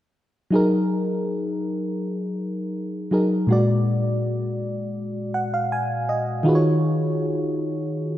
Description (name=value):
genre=R&B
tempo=81 BPM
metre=4/4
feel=straight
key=unclear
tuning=A4 = 440 Hz
part: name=mellow FM electric piano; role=accompaniment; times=0.5-8.2 s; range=A#2 to G#5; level=-21 LUFS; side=equal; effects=chorus
room=light reverb, digital ambience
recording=none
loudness=-21 LUFS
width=side -13 dB against mid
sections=0.5-8.2 A section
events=FM electric piano fill 5.0-6.5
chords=0.5 F#69; 3.5 A#7b13; 6.5 D#m11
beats=| 0.53 1.27 2.01 2.75 | 3.49 4.23 4.97 5.71 | 6.45 7.19 7.93